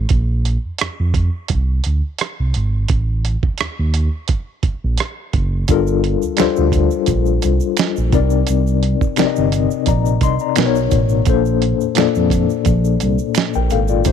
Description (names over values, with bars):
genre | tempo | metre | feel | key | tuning
R&B, neo-soul | 86 BPM | 4/4 | swing 53% on 16ths | unclear | A4 = 438 Hz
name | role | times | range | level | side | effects
smooth synth bass | bass | 0.0-14.1 s | F#1 to F2 | -18 LUFS | right 1 dB | none
dusty soul sampler-style drum kit | drums | 0.1-14.1 s | hi-hat, kick drum, rim click, snare drum | -19 LUFS | right 4 dB | none
mellow tine electric piano | accompaniment | 5.7-14.1 s | A2 to C6 | -17 LUFS | left 12 dB | medium tremolo
egg shaker and finger snaps | percussion | 5.7-14.1 s | none | -30 LUFS | right 16 dB | none
room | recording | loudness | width
little or no reverb | 1960s-style stereo with parts hard left and right | -15 LUFS | side -8 dB against mid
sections
0.0-14.1 A section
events
none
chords
0.1 Bbadd9; 2.9 F#m6; 5.7 Gm9; 8.1 Cm9; 10.6 Bmaj9; 11.3 Bbmaj9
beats
| 0.10 0.80 1.50 2.20 | 2.89 3.59 4.29 4.99 | 5.68 6.38 7.08 7.78 | 8.48 9.17 9.87 10.57 | 11.27 11.96 12.66 13.36 | 14.06